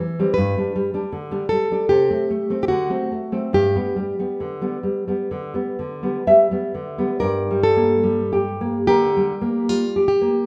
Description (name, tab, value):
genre	romantic duo for nylon-string guitar and classical guitar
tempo	60-80 BPM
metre	4/4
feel	rubato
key	G major, G minor from 7.2 s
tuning	A4 = 444 Hz
part	nylon-string guitar	accompaniment	0.0-10.5 s	G2 to E5	-23 LUFS	equal	none
part	nylon-string guitar	melody	0.3-10.5 s	F4 to B4	-23 LUFS	equal	none
room	moderate recital hall reverb, RT60 1.5 s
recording	none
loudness	-21 LUFS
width	mono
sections	0.0-7.2 A section; 7.2-10.5 B section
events	none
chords	0.3 G; 1.9 Am/C; 2.7 D7; 3.5 G; 7.2 Gm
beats	| 0.33 1.09 1.88 2.68 | 3.54 4.42 5.30 6.26 | 7.18 8.03 8.87 9.68